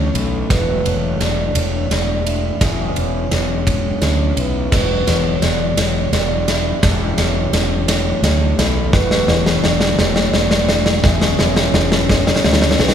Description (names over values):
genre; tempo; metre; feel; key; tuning
post-rock; 57 BPM (dotted quarters); 6/8; straight; unclear; A4 = 443 Hz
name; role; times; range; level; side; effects
pedal steel guitar; sustained chords; 0.0-12.9 s; C#3 to A4; -28 LUFS; equal; none
clean electric guitar; arpeggios; 0.0-12.9 s; E2 to E4; -24 LUFS; left 4 dB; phaser
vibraphone with soft mallets; arpeggios; 0.0-12.9 s; A4 to E5; -23 LUFS; right 3 dB; none
fuzz fingered electric bass; bass; 0.0-12.9 s; E1 to D2; -19 LUFS; equal; overdrive
big rock drum kit; drums; 0.2-12.9 s; crash cymbal, kick drum, ride cymbal, snare drum; -17 LUFS; equal; none
room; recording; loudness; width
wet church reverb, RT60 2.8 s; recorded in a church or concert hall; -14 LUFS; side -9 dB against mid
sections
0.0-12.9 A section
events
build-up 0.0-12.9; drum fill 0.0-12.9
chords
0.0 A7; 0.5 D/E; 2.6 C#m7/E; 4.7 Eadd9; 6.8 A7/E; 8.9 D/E; 11.0 C#m7/E